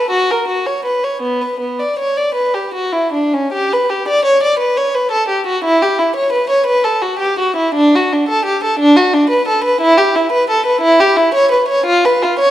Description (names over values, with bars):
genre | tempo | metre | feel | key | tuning
classical, baroque-style suite movement for unaccompanied violin | 49-60 BPM (dotted quarters) | 6/8 | rubato | unclear | A4 = 440 Hz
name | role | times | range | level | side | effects
rich violin | solo | 0.0-12.5 s | B3 to D5 | -12 LUFS | equal | none
room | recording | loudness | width
moderate recital hall reverb, RT60 1.5 s | dark, warm production | -12 LUFS | side -12 dB against mid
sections
0.0-3.5 A section; 3.5-12.5 A section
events
none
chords
none